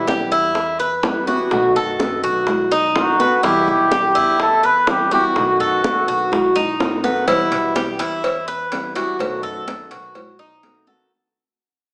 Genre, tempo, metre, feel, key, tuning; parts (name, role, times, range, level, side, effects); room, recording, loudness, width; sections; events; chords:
latin, Cuban son and guajira; 125 BPM; 4/4; straight; E harmonic minor; A4 = 439 Hz
fingerpicked steel-string acoustic guitar; accompaniment; 0.0-11.1 s; B2 to F#4; -27 LUFS; equal
Cuban tres; arpeggios; 0.0-11.1 s; D#4 to B4; -22 LUFS; equal
upright bass; bass; 0.0-10.8 s; B1 to A2; -37 LUFS; equal
bongos and cowbell; percussion; 0.1-10.9 s; -28 LUFS; equal
congas; percussion; 0.1-11.1 s; -30 LUFS; equal
trumpet with cup mute; melody; 3.0-6.8 s; F#4 to B4; -19 LUFS; equal
wet large studio reverb, RT60 1.2 s; small speaker sound; -18 LUFS; mono
0.0-7.3 A section; 7.3-11.1 B section
fade-out 7.3-11.1
0.0 Em; 1.5 B7; 3.4 Em; 5.4 B7; 7.3 Em; 9.2 B7